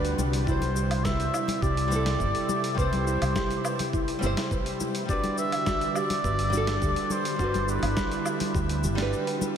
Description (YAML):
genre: sunset chillout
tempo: 104 BPM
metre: 4/4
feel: straight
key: G major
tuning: A4 = 440 Hz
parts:
  - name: trumpet with cup mute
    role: melody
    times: 0.0-8.8 s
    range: B4 to E5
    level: -30 LUFS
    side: equal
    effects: ping-pong delay
  - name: nylon-string guitar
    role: accompaniment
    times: 0.0-9.6 s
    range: G3 to C5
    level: -32 LUFS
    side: moving between left 2 dB and right 5 dB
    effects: auto-pan, analog delay
  - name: airy breathy pad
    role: sustained chords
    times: 0.0-9.6 s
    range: C3 to F#4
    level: -34 LUFS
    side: right 2 dB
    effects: chorus
  - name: soft round pluck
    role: arpeggios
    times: 0.0-9.5 s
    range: E4 to G5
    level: -36 LUFS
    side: right 1 dB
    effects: lush chorus, analog delay
  - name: mellow fretless electric bass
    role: bass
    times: 0.0-9.1 s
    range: G1 to D2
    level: -28 LUFS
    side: equal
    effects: none
  - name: dusty soul sampler-style drum kit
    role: drums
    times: 0.0-9.5 s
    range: hi-hat, shaker, snare drum, woodblock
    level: -34 LUFS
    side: equal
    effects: overdrive, small room ambience
  - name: congas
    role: percussion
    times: 0.2-9.5 s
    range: none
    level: -37 LUFS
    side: left 3 dB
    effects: none
  - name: electronic kick drum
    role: drums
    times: 0.5-8.7 s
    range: none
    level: -32 LUFS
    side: equal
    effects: overdrive, small room ambience
room: wet huge ambient reverb, RT60 8.0 s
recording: dreamy mix soaked in reverb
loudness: -24 LUFS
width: side -8 dB against mid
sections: 0.0-9.6 A section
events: none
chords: 0.5 Cmaj7; 5.1 Gmaj7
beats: | 0.47 1.05 1.63 2.20 | 2.78 3.36 3.94 4.51 | 5.09 5.67 6.24 6.82 | 7.40 7.97 8.55 9.13